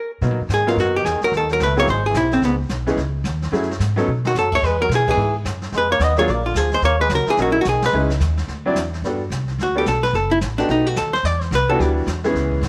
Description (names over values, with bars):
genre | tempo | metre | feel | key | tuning
jazz, small-group swing and bop | 218 BPM | 4/4 | swing 61% on 8ths | B major, G major from 9.0 s | A4 = 439 Hz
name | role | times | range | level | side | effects
archtop guitar, miked and amplified | melody | 0.0-11.9 s | B3 to D#5 | -21 LUFS | equal | none
bright upright piano | accompaniment | 0.2-12.6 s | E3 to D5 | -24 LUFS | equal | none
upright bass | bass | 0.2-12.7 s | F#1 to B2 | -25 LUFS | equal | none
jazz brush drum kit | drums | 0.2-12.7 s | brushed snare drum, crash cymbal, hi-hat, kick drum, ride cymbal, snare drum | -33 LUFS | equal | none
trombone with straight mute | second line | 0.5-8.1 s | G#2 to B3 | -30 LUFS | equal | none
room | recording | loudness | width
light reverb, studio reverb | none | -19 LUFS | mono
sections
0.2-9.0 A section; 9.0-12.7 B section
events
stop 0.0; drum fill 4.1; band accent 5.0, 7.8; hollow-body jazz guitar solo 9.0-12.7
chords
0.2 Bmaj7; 1.3 C#m13; 1.9 G#aug; 2.4 C#7sus2; 3.5 F#m9; 4.1 B5; 4.6 E; 5.7 D#m11; 6.3 A#; 6.8 D#m7; 7.9 C#m9; 8.5 D9; 9.0 Gmaj9; 10.1 Gmaj9/F#; 10.7 B7b13; 11.2 Em9